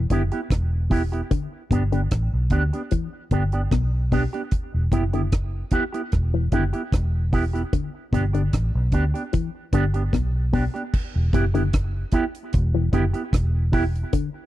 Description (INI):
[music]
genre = roots reggae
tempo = 75 BPM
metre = 4/4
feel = straight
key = E minor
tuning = A4 = 439 Hz
[part]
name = electric guitar with an envelope filter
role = arpeggios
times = 0.0-14.3 s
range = B2 to E3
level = -27 LUFS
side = left 8 dB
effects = none
[part]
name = vintage muted fingered electric bass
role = bass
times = 0.0-14.0 s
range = E1 to D2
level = -22 LUFS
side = equal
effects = none
[part]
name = electric guitar with an envelope filter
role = accompaniment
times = 0.1-13.8 s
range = B3 to G4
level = -27 LUFS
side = right 4 dB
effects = wide subtle chorus, tape echo
[part]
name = deep reggae drum kit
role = drums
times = 0.1-14.3 s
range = crash cymbal, hi-hat, kick drum, rim click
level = -23 LUFS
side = equal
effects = none
[sound]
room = studio ambience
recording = dry, close 1970s-style studio recording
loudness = -20 LUFS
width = side -14 dB against mid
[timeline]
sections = 0.0-10.9 A section; 10.9-14.5 B section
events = none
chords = 0.0 Em; 1.3 G; 4.5 Em; 7.7 G; 10.9 Em